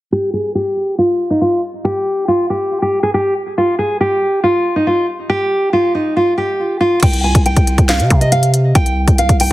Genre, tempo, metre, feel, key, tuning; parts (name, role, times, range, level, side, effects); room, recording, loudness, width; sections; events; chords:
hip hop, trap; 139 BPM; 4/4; half-time; C minor; A4 = 440 Hz
nylon-string guitar; melody; 0.1-9.5 s; Eb4 to Ab5; -14 LUFS; equal; low-pass filter, digital delay
growling 808-style bass; bass; 7.0-9.5 s; C2 to C3; -14 LUFS; equal
trap drum kit; drums; 7.0-9.5 s; crash cymbal, handclaps, hi-hat, kick drum, snare drum; -13 LUFS; equal
light reverb; heavily compressed radio sound, multiband compression; -12 LUFS; side -16 dB against mid
0.1-7.0 A section; 7.0-9.5 B section
filter sweep on nylon-string guitar 0.1-7.0
0.1 N.C.; 7.0 C5